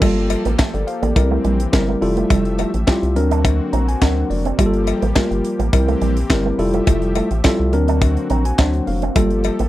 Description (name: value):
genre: early-eighties boogie funk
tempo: 105 BPM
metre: 4/4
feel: straight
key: unclear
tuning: A4 = 442 Hz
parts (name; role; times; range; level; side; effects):
- tine electric piano; accompaniment; 0.0-9.6 s; F#3 to A#5; -20 LUFS; left 1 dB; none
- brassy analog pad; sustained chords; 0.0-9.7 s; D3 to E5; -28 LUFS; left 2 dB; chorus
- electric guitar with an envelope filter; riff; 0.0-9.7 s; G3 to D4; -24 LUFS; right 8 dB; wide subtle chorus
- rubbery square bass; bass; 0.0-9.7 s; F1 to D2; -20 LUFS; equal; none
- tight funk drum kit; drums; 0.0-9.7 s; crash cymbal, handclaps, hi-hat, kick drum, snare drum; -18 LUFS; equal; none
- cowbell; percussion; 0.0-9.6 s; none; -28 LUFS; left 17 dB; none
room: little or no reverb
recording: dry, close 1970s-style studio recording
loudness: -15 LUFS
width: side -15 dB against mid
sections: 0.0-9.7 A section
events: tine electric piano fill 3.4-4.6, 8.0-9.2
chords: 0.0 Gm9; 1.2 C7; 2.0 Fmaj9; 3.2 D7alt; 4.6 Gm9; 5.7 C7; 6.6 Fmaj9; 7.7 D7alt; 9.2 Gm9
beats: | 0.02 0.59 1.16 1.73 | 2.30 2.87 3.44 4.02 | 4.59 5.16 5.73 6.30 | 6.87 7.45 8.02 8.59 | 9.16